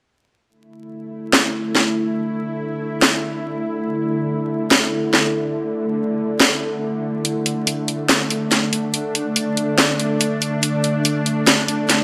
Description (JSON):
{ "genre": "deep dubstep", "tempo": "142 BPM", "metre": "4/4", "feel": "swing 61% on 16ths, half-time", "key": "unclear", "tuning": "A4 = 440 Hz", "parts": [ { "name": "bowed-like drone", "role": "sustained chords", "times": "0.8-12.0 s", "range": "D3 to E4", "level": "-23 LUFS", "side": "equal", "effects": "built-in reverb" }, { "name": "garage drum kit", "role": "drums", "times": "1.3-12.0 s", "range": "hi-hat, snare drum", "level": "-18 LUFS", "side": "equal", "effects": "none" } ], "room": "wet echo chamber reverb, RT60 1.3 s", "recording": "vinyl crackle", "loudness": "-20 LUFS", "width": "mono", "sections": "0.5-12.0 A section", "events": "none", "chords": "0.5 D5" }